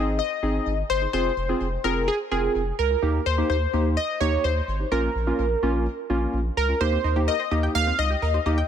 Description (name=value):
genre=pop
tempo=127 BPM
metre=4/4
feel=straight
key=unclear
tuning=A4 = 440 Hz
part: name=funky polysynth comp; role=melody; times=0.0-8.7 s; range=Ab4 to F5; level=-25 LUFS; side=equal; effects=chorus, digital delay
part: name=warm analog keys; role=accompaniment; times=0.0-8.6 s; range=Bb3 to Bb4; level=-28 LUFS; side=equal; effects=chorus
part: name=round analog bass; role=bass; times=0.0-8.6 s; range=F1 to Eb2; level=-26 LUFS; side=equal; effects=none
part: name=analog pluck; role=arpeggios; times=6.8-8.7 s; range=Bb3 to G5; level=-32 LUFS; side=right 4 dB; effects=chorus, digital delay
room=light reverb, digital ambience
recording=none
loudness=-21 LUFS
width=side -9 dB against mid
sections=0.0-6.8 A section; 6.8-8.7 B section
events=none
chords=0.0 Ab; 1.1 Fm; 3.0 Eb; 4.9 Bbm; 6.8 Eb6